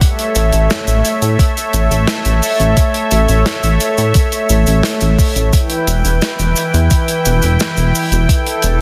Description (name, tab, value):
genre	synthwave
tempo	87 BPM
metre	4/4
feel	straight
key	unclear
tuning	A4 = 438 Hz
part	warm analog pad	sustained chords	0.0-8.8 s	E3 to G5	-19 LUFS	equal	chorus, sidechain pumping
part	electronic kick drum	drums	0.0-8.4 s	none	-15 LUFS	equal	overdrive
part	modern studio drum kit	drums	0.0-8.8 s	cabasa, hi-hat, snare drum	-22 LUFS	equal	none
part	chorused synth bass	bass	0.4-8.8 s	E1 to A2	-15 LUFS	equal	sidechain pumping
room	light reverb, small room ambience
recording	dense, heavily limited modern master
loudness	-14 LUFS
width	mono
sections	0.0-8.8 A section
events	none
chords	0.0 A; 5.5 Em